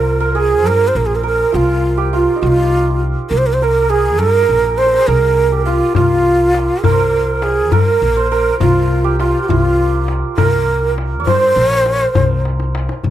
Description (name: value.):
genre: Persian modal ensemble.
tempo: 68 BPM (dotted quarters).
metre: 6/8.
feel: straight.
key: C dastgah shur.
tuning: A4 = 439 Hz.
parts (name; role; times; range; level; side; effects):
breathy ney; melody; 0.0-12.4 s; F4 to C5; -14 LUFS; right 2 dB; none.
santur; second line; 0.0-13.1 s; Eb4 to Db5+45c; -20 LUFS; right 6 dB; none.
upright bass; bass; 0.0-13.1 s; Bb1 to G2; -17 LUFS; left 1 dB; none.
tombak; percussion; 5.9-13.1 s; none; -18 LUFS; left 5 dB; none.
room: light reverb.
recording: none.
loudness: -12 LUFS.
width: side -12 dB against mid.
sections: 0.0-13.0 A section.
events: drum fill 12.4-13.0.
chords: none.